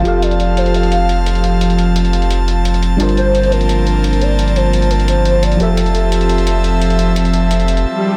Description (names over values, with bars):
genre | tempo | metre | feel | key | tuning
liquid drum and bass | 173 BPM | 4/4 | straight | unclear | A4 = 441 Hz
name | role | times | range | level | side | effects
hollow clarinet-like synth lead | melody | 0.0-6.3 s | A4 to F5 | -23 LUFS | equal | ensemble chorus, dub echo
mellow FM electric piano | accompaniment | 0.0-7.9 s | F3 to A5 | -21 LUFS | equal | chorus
airy breathy pad | sustained chords | 0.0-8.2 s | F3 to A5 | -21 LUFS | equal | chorus
warm sub bass | bass | 0.0-7.9 s | F1 to G1 | -18 LUFS | equal | none
electronic hi-hat | drums | 0.1-7.8 s | none | -29 LUFS | equal | low-pass filter on hats
swell | sound effects | 7.9-8.2 s | none | -19 LUFS | equal | none
room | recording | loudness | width
digital ambience | none | -14 LUFS | mono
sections
0.0-8.2 A section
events
swell 7.9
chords
0.1 F; 3.0 Gm11; 5.6 Fmaj7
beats
| 0.22 0.57 0.92 1.26 | 1.61 1.96 2.31 2.65 | 3.00 3.35 3.69 4.04 | 4.39 4.73 5.08 5.43 | 5.77 6.12 6.47 6.81 | 7.16 7.51 7.85